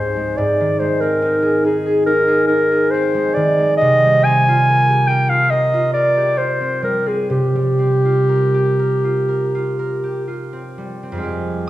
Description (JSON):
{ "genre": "classical, impressionist duo for clarinet and harp", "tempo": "59-74 BPM", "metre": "4/4", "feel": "rubato", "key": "unclear", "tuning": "A4 = 440 Hz", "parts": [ { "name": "warm clarinet", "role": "melody", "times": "0.0-10.2 s", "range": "G4 to Ab5", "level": "-16 LUFS", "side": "equal", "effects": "none" }, { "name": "concert harp", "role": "accompaniment", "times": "0.0-11.7 s", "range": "Db2 to Bb4", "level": "-18 LUFS", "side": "equal", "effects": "none" } ], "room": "wet recital hall reverb, RT60 1.4 s", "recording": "minimal, uncompressed stereo recording", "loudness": "-14 LUFS", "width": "side -15 dB against mid", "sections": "0.0-11.3 A section", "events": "none", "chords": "0.4 Ab; 3.8 C7sus4" }